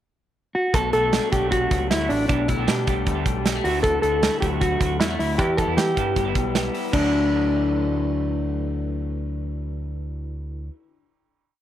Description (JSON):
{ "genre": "jangly indie pop", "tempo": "155 BPM", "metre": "4/4", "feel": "straight", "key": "D major", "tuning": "A4 = 436 Hz", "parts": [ { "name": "mellow electric guitar", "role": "melody", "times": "0.5-10.7 s", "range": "D4 to A4", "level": "-23 LUFS", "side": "equal", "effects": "slapback echo" }, { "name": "electric guitar through a small old amp", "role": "accompaniment", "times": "0.7-10.8 s", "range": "D3 to G4", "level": "-32 LUFS", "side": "right 11 dB", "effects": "harmonic tremolo" }, { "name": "electric guitar through a small old amp", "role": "arpeggios", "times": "0.7-10.8 s", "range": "B2 to E4", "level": "-30 LUFS", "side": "left 12 dB", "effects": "slapback echo" }, { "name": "deep dub picked electric bass", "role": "bass", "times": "0.7-10.7 s", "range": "G1 to E3", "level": "-27 LUFS", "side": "equal", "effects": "none" }, { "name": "modern studio drum kit", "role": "drums", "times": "0.7-7.0 s", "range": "crash cymbal, hi-hat, kick drum, snare drum", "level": "-24 LUFS", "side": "right 2 dB", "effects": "none" } ], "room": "light reverb, small room ambience", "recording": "1960s-style stereo with parts hard left and right", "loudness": "-20 LUFS", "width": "side -11 dB against mid", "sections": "0.0-0.7 pickup bar; 0.7-6.9 verse; 6.9-10.0 final chord", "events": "none", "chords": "0.0 N.C.; 0.7 Bm7; 2.3 Gadd9/B; 3.6 Dadd9; 5.4 Em; 6.9 Dadd9" }